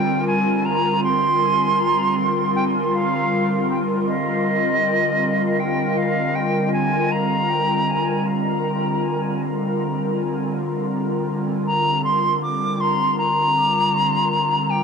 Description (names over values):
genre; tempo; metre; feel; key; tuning
ambient; 79 BPM; 4/4; swing 58% on 16ths; unclear; A4 = 442 Hz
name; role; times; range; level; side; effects
silver concert flute; melody; 0.0-14.8 s; Eb5 to D6; -20 LUFS; equal; dub echo
airy breathy pad; sustained chords; 0.0-14.8 s; D3 to Bb4; -21 LUFS; equal; chorus
room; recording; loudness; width
wet echo chamber reverb, RT60 1.6 s; dark, warm production; -18 LUFS; side -6 dB against mid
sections
0.0-14.8 A section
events
none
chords
0.0 Bb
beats
0.65 1.41 2.17 | 2.93 3.69 4.45 5.21 | 5.97 6.73 7.49 8.25 | 9.01 9.77 10.53 11.28 | 12.04 12.80 13.56 14.32